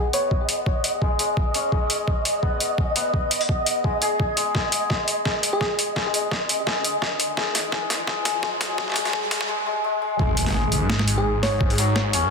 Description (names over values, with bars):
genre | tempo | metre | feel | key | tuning
half-time drum and bass | 170 BPM | 4/4 | swing 55% on 16ths, half-time | G# minor | A4 = 440 Hz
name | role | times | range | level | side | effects
soft struck synth lead | melody | 0.0-0.4, 5.5-5.7, 11.2-11.7 s | G#4 to C#5 | -28 LUFS | left 1 dB | chorus, ping-pong delay
santur | arpeggios | 0.0-12.3 s | F#3 to G#4 | -27 LUFS | left 5 dB | low-pass filter, ping-pong delay
flickering grainy texture | texture | 0.0-9.5 s | D#5 | -28 LUFS | right 1 dB | built-in reverb
boom bap sampler-style drum kit | drums | 0.1-12.2 s | hi-hat, snare drum | -25 LUFS | equal | overdrive, high-pass filter on snare, studio reverb, high-pass filter on hats
electronic kick drum | drums | 0.3-11.7 s | none | -24 LUFS | equal | overdrive, studio reverb
riser and impact | sound effects | 6.5-11.6 s | none | -31 LUFS | right 1 dB | none
phased detuned saw bass | bass | 10.2-12.3 s | G#1 to G#2 | -23 LUFS | equal | phaser
room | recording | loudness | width
moderate echo chamber reverb, RT60 1.4 s | dense, heavily limited modern master, high-pass filter | -20 LUFS | side -4 dB against mid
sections
0.0-10.2 A section; 10.2-12.3 B section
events
build-up 0.0-10.2; filter sweep 0.0-10.2; drum fill 4.5-9.5; riser 6.5-9.5; drop 10.2-12.3; impact 10.2-11.6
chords
0.0 G#m; 10.2 G#5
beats
| 0.31 0.67 1.02 1.37 | 1.73 2.08 2.43 2.79 | 3.14 3.49 3.84 4.20 | 4.55 4.90 5.25 5.61 | 5.96 6.31 6.67 7.02 | 7.37 7.73 8.08 8.43 | 8.79 9.14 9.49 9.84 | 10.20 10.55 10.90 11.26 | 11.61 11.96